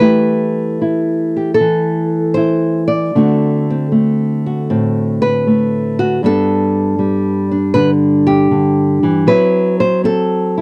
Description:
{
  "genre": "solo jazz",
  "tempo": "78 BPM",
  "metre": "4/4",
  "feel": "swing 69% on 8ths, rubato",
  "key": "G major",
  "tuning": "A4 = 440 Hz",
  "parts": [
    { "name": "nylon-string guitar", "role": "solo", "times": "0.0-10.6 s", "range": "G2 to D5", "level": "-14 LUFS", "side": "equal", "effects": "none" }
  ],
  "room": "moderate booth ambience, RT60 0.2 s",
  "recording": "dry, close 1970s-style studio recording",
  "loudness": "-15 LUFS",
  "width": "mono",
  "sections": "0.0-10.6 A section",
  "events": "none",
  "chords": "0.0 Asus2; 3.2 D6; 6.2 G; 9.3 F#m7b5"
}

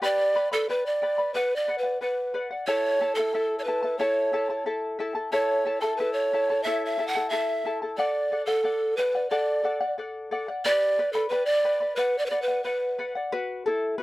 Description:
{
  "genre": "andean folk, Andean ensemble",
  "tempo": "90 BPM",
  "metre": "2/4",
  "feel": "straight",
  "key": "unclear",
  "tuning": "A4 = 440 Hz",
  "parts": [
    { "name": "breathy mellow pan flute", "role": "melody", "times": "0.0-13.1 s", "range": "A4 to F#5", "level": "-24 LUFS", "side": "right 1 dB", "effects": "none" },
    { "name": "charango", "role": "accompaniment", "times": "0.0-14.0 s", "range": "E4 to B5", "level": "-29 LUFS", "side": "left 2 dB", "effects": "none" }
  ],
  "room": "little or no reverb",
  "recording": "dry, close 1970s-style studio recording",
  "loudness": "-24 LUFS",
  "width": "side -18 dB against mid",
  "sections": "0.0-2.7 A section; 2.7-13.3 A section",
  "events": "none",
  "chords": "0.0 G; 1.3 Bm; 2.7 A; 8.0 D; 10.7 G; 12.0 Bm; 13.3 B5"
}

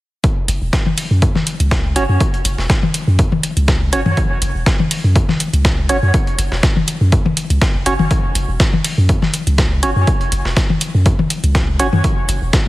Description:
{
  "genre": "minimal techno",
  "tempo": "122 BPM",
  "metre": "4/4",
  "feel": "swing 54% on 16ths",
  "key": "unclear",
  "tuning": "A4 = 439 Hz",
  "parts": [
    { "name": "breakbeat sampler-style drum kit", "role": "drums", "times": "0.2-12.7 s", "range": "hi-hat, snare drum", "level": "-24 LUFS", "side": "equal", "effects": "sidechain pumping on hats, high-pass filter on hats, high-pass filter on snare" },
    { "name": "electronic kick drum", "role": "drums", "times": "0.2-12.6 s", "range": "none", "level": "-16 LUFS", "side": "equal", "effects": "none" },
    { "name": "punchy sub bass", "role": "bass", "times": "0.5-12.5 s", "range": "E1 to F#2", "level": "-16 LUFS", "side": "equal", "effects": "sidechain pumping" },
    { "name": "electronic hi-hat", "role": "drums", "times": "0.5-12.4 s", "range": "none", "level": "-23 LUFS", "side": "right 1 dB", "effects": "overdrive" },
    { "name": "electronic toms", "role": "percussion", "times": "0.9-12.0 s", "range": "none", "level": "-20 LUFS", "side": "left 4 dB", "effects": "tape echo" },
    { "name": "percussive organ stab", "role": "stabs", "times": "2.0-11.9 s", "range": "C#4 to C#5", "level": "-21 LUFS", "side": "right 2 dB", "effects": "lush chorus, tape echo" }
  ],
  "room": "light reverb",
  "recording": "heavily compressed radio sound, multiband compression",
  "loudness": "-13 LUFS",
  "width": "side -18 dB against mid",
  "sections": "0.2-12.7 A section",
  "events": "none",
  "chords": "0.2 F#5"
}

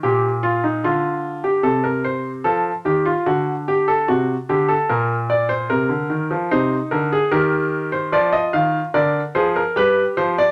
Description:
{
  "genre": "classical, baroque-style 3-part fugue for grand piano",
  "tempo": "74 BPM",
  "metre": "4/4",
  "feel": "straight",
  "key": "unclear",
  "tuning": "A4 = 439 Hz",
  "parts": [
    { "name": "clear baby grand piano", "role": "solo", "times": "0.0-10.5 s", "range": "Bb2 to F5", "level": "-19 LUFS", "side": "equal", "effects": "none" }
  ],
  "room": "moderate large studio reverb, RT60 0.9 s",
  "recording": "none",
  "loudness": "-19 LUFS",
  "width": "mono",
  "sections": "0.0-10.5 A section",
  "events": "none",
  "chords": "0.0 Gm/Bb; 1.6 Adim/C; 3.3 D; 4.9 Bbadd9; 6.5 Cm; 8.1 Ddim; 9.8 G"
}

